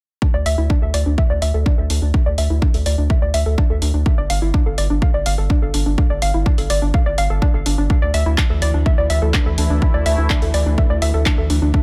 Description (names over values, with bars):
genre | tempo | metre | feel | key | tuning
melodic techno | 125 BPM | 4/4 | straight | unclear | A4 = 441 Hz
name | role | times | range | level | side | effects
warbly dusty pluck | arpeggios | 0.2-11.8 s | D4 to F5 | -25 LUFS | equal | chorus, sidechain pumping, dub echo
electronic kick drum | drums | 0.2-11.8 s | none | -19 LUFS | equal | none
round analog bass | bass | 0.3-11.7 s | G1 to D2 | -20 LUFS | equal | sidechain pumping
punchy analog drum machine | drums | 0.5-11.6 s | handclaps, hi-hat | -28 LUFS | equal | none
sweeping resonant pad | sustained chords | 7.9-11.8 s | D3 to F4 | -29 LUFS | equal | chorus, sidechain pumping
room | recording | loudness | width
digital ambience | none | -17 LUFS | mono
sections
0.2-11.8 A section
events
none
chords
0.2 Dsus2; 4.1 G5; 7.9 Dsus2